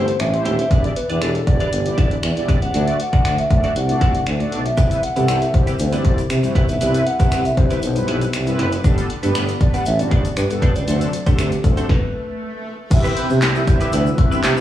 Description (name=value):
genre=dance-pop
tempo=118 BPM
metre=4/4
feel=straight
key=unclear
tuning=A4 = 440 Hz
part: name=hollow clarinet-like synth lead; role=melody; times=0.0-14.6 s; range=G4 to G6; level=-24 LUFS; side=equal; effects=chorus, dub echo
part: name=mellow synth brass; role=accompaniment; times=0.0-14.6 s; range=F#3 to E5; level=-25 LUFS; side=left 1 dB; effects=chorus, sidechain pumping
part: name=direct-recorded clean electric guitar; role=riff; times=0.0-14.6 s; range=A3 to D5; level=-30 LUFS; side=right 5 dB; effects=analog chorus
part: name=clear tuba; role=bass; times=0.0-14.5 s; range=D#1 to D3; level=-21 LUFS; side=equal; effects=sidechain pumping
part: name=downlifter and swell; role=sound effects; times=0.0-0.7, 12.0-12.9 s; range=none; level=-36 LUFS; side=right 1 dB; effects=none
part: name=punchy analog drum machine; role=drums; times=0.1-14.6 s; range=crash cymbal, finger snaps, handclaps, hi-hat, kick drum, snare drum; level=-18 LUFS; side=equal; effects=none
part: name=egg shaker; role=percussion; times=4.8-14.6 s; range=none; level=-40 LUFS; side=left 5 dB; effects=none
part: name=glassy FM pad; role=sustained chords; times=13.2-14.6 s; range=C3 to B4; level=-26 LUFS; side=left 1 dB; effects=none
room=light reverb, digital ambience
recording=played on a big sound system in a bare room, large studio reverb, small room ambience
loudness=-16 LUFS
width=side -12 dB against mid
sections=0.0-12.9 A section; 12.9-14.6 B section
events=stop 11.9-12.9; swell 12.0-12.9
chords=0.0 Am7; 0.7 Em7; 2.7 D; 4.8 Cmaj7; 8.8 Gadd9; 10.9 D7; 11.9 N.C.; 12.9 Cmaj7